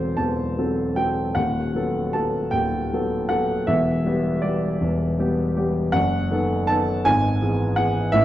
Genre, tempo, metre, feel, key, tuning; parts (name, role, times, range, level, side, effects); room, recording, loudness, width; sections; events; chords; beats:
classical, romantic character piece for solo piano; 53 BPM (dotted quarters); 6/8; uneven beats, rubato; E minor; A4 = 437 Hz
warm grand piano; solo; 0.0-8.2 s; D#1 to A5; -20 LUFS; equal
wet recital hall reverb, RT60 1.5 s; -20 LUFS; side -13 dB against mid
0.0-8.2 A section
0.0 F#m7b5/E; 1.4 B7/D#; 3.7 Em; 5.9 B7/F#; 7.1 E/G#
0.19 | 1.37 2.55 | 3.68 4.80 | 5.93 7.05 | 8.14